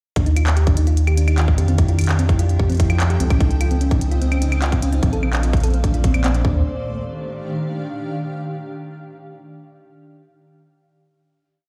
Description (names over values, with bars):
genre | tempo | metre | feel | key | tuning
IDM | 148 BPM | 4/4 | straight | Eb lydian | A4 = 437 Hz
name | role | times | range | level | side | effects
granular cloud pad | sustained chords | 0.8-8.2 s | Bb2 to G5 | -29 LUFS | equal | built-in reverb
thumb-piano-like synth pluck | arpeggios | 0.2-6.6 s | C4 to A4 | -29 LUFS | equal | chorus, digital delay
rubbery square bass | bass | 0.2-6.6 s | Bb1 to F2 | -20 LUFS | equal | none
electronic kick drum | drums | 0.2-6.5 s | none | -21 LUFS | equal | none
glitchy drum kit | drums | 0.2-6.4 s | claves, handclaps, hi-hat | -30 LUFS | equal | digital delay
room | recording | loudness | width
light reverb, digital ambience | played on a big sound system in a bare room, large studio reverb | -19 LUFS | mono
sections
0.2-6.6 groove; 6.6-8.3 final chord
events
none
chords
0.2 Ebmaj9; 1.6 Fmaj9; 3.2 Dbmaj9; 5.0 Bbmaj9; 6.4 N.C.; 6.6 Ebmaj9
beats
| 0.16 0.57 0.97 1.38 | 1.78 2.19 2.60 3.00 | 3.41 3.81 4.22 4.62 | 5.03 5.43 5.84 6.24 | 6.65 7.05 7.46 7.87